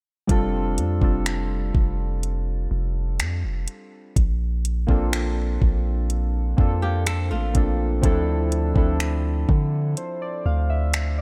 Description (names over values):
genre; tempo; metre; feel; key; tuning
contemporary R&B; 62 BPM; 4/4; straight; F major; A4 = 441 Hz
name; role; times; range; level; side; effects
soft electric-piano-like synth keys; accompaniment; 0.3-11.2 s; F3 to F5; -30 LUFS; equal; chorus
long sustained 808-style bass; bass; 0.3-11.2 s; F1 to D3; -26 LUFS; equal; none
smooth R&B drum kit; drums; 0.3-11.2 s; finger snaps, hi-hat, kick drum; -24 LUFS; equal; none
flamenco guitar; arpeggios; 6.8-8.0 s; A3 to A4; -33 LUFS; equal; slapback echo
room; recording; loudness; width
little or no reverb; none; -23 LUFS; mono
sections
0.3-11.2 A section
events
none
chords
0.3 F6; 4.2 Bbmaj7; 8.0 Dm7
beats
| 0.29 1.26 2.23 3.20 | 4.16 5.13 6.10 7.07 | 8.04 9.00 9.97 10.94